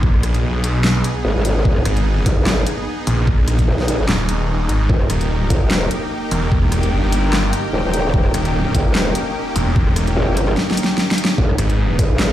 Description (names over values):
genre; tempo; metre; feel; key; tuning
heavy wobble dubstep; 148 BPM; 4/4; swing 55% on 16ths, half-time; G# harmonic minor; A4 = 437 Hz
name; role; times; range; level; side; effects
supersaw pad; sustained chords; 0.0-12.3 s; A#3 to G#4; -25 LUFS; right 2 dB; sidechain pumping
snarling distorted saw bass; bass; 0.0-12.0 s; D#1 to B1; -17 LUFS; equal; distortion, overdrive
electronic kick drum; drums; 0.0-12.1 s; none; -16 LUFS; equal; overdrive, small room ambience
muted studio string section; texture; 0.0-12.3 s; D#4 to G#5; -28 LUFS; left 2 dB; sidechain pumping
dubstep drum kit; drums; 0.1-12.3 s; handclaps, hi-hat, rim click, snare drum; -21 LUFS; left 1 dB; overdrive, small room ambience
growl bass; bass; 1.2-12.3 s; D#1 to B1; -18 LUFS; equal; chorus, overdrive
room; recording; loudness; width
digital ambience; played on a big sound system in a bare room, large studio reverb; -15 LUFS; side -12 dB against mid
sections
0.0-12.3 A section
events
drum fill 10.6-11.4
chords
0.0 G#m; 4.9 D#; 11.4 G#m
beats
| 0.03 0.44 0.84 1.25 | 1.65 2.06 2.46 2.87 | 3.27 3.68 4.08 4.49 | 4.89 5.30 5.71 6.11 | 6.52 6.92 7.33 7.73 | 8.14 8.54 8.95 9.36 | 9.76 10.16 10.57 10.98 | 11.38 11.79 12.19